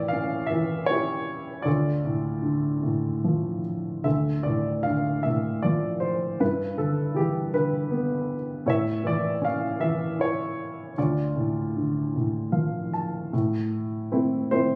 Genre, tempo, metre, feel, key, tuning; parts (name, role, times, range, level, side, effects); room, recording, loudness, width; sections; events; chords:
classical, lyrical solo piano; 52 BPM (dotted quarters); 6/8; rubato; D dorian; A4 = 440 Hz
warm upright piano; solo; 0.0-14.8 s; D2 to A5; -26 LUFS; equal
moderate concert hall reverb, RT60 1.8 s; recorded on a phone in the room, studio reverb, compression; -26 LUFS; mono
0.0-4.1 A section; 4.1-13.3 A section; 13.3-14.8 B section
upright piano fill 12.1-13.3
0.0 A7; 1.7 Dm; 6.4 G6; 8.7 A; 11.0 Dm; 13.3 Am